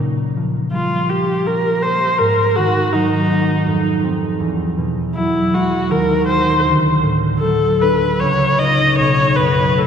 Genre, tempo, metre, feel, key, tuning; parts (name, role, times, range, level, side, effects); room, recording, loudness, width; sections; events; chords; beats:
classical, impressionist duo for viola and harp; 81 BPM; 3/4; rubato; Bb minor; A4 = 440 Hz
concert harp; accompaniment; 0.0-9.9 s; B1 to G4; -17 LUFS; equal
rich viola; melody; 0.7-9.9 s; Eb4 to D#5; -17 LUFS; left 1 dB
wet cathedral reverb, RT60 4.2 s; -14 LUFS; side -7 dB against mid
0.0-9.9 A section
0.0 Bbm6; 2.2 Absus2; 3.7 Fsus2; 4.4 Eadd9; 5.9 D#add9; 6.7 D; 8.2 C#add9; 9.0 Badd9
0.72 1.46 | 2.19 2.93 3.67 | 4.41 5.16 5.91 | 6.65 7.41 8.19 | 8.97 9.76